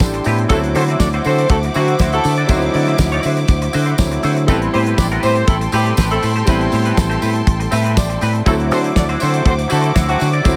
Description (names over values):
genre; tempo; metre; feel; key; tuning
disco; 120 BPM; 4/4; straight; unclear; A4 = 440 Hz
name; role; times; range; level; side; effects
clear concert grand piano; accompaniment; 0.0-10.6 s; F#3 to E5; -25 LUFS; equal; none
semi-hollow electric guitar; accompaniment; 0.0-10.6 s; C4 to D5; -26 LUFS; equal; analog chorus
warm studio string section; sustained chords; 0.0-10.6 s; A4 to D6; -26 LUFS; equal; none
fingered electric bass; bass; 0.0-10.6 s; A1 to D3; -20 LUFS; equal; none
damped 70s drum kit; drums; 0.0-10.6 s; hi-hat, kick drum, snare drum; -21 LUFS; equal; none
tambourine; percussion; 0.2-10.6 s; none; -34 LUFS; equal; none
warm horn section; stabs; 0.5-10.3 s; F#3 to D5; -22 LUFS; equal; none
room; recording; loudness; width
light reverb; none; -16 LUFS; mono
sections
0.0-10.6 A section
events
grand piano fill 7.5-8.5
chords
0.5 D9; 4.5 Am9; 8.5 D9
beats
0.00 | 0.50 1.00 1.50 1.99 | 2.49 2.99 3.49 3.99 | 4.48 4.98 5.48 5.98 | 6.47 6.97 7.47 7.97 | 8.46 8.96 9.46 9.96 | 10.46